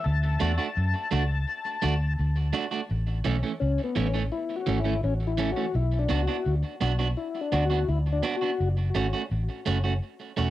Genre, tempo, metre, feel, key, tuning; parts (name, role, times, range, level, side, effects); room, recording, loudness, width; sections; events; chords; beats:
roots reggae; 84 BPM; 4/4; straight; A major; A4 = 440 Hz
mellow tonewheel organ; melody; 0.0-8.7 s; B3 to A5; -31 LUFS; left 5 dB; chorus vibrato, slow rotary speaker, cassette tape, tape echo
vintage muted fingered electric bass; bass; 0.1-10.5 s; E1 to F#2; -25 LUFS; equal
electric guitar at the edge of break-up; accompaniment; 0.4-10.5 s; E3 to F#4; -30 LUFS; right 6 dB; tape echo
moderate studio ambience, RT60 0.5 s; home recording on cassette; -24 LUFS; side -14 dB against mid
0.0-2.9 A section; 2.9-10.5 B section
tonewheel organ solo 2.9-10.5
0.0 D; 2.9 A; 5.7 Bm; 8.6 F#m
| 0.04 0.75 1.46 2.18 | 2.89 3.60 4.31 5.02 | 5.74 6.45 7.16 7.87 | 8.59 9.30 10.01